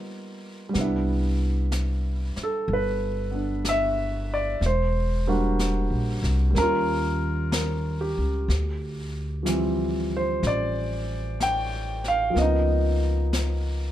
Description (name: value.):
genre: jazz ballad.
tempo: 62 BPM.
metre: 4/4.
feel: swing 68% on 8ths.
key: C major.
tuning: A4 = 440 Hz.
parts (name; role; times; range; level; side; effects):
warm concert grand piano; accompaniment; 0.0-13.9 s; E3 to G5; -26 LUFS; right 1 dB; none.
upright bass; bass; 0.7-13.9 s; E1 to Eb2; -26 LUFS; equal; none.
jazz brush drum kit; drums; 0.7-13.9 s; brushed snare drum, hi-hat, snare drum; -35 LUFS; left 2 dB; none.
room: little or no reverb.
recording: none.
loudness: -23 LUFS.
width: side -12 dB against mid.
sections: 0.7-13.9 A section.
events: none.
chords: 0.0 G7alt; 0.7 Cmaj9; 4.6 Em7b5; 6.5 Eb9; 8.5 Dm11; 12.3 Db13.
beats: | 0.74 1.71 2.68 3.65 | 4.62 5.58 6.55 7.52 | 8.48 9.45 10.42 11.38 | 12.35 13.31.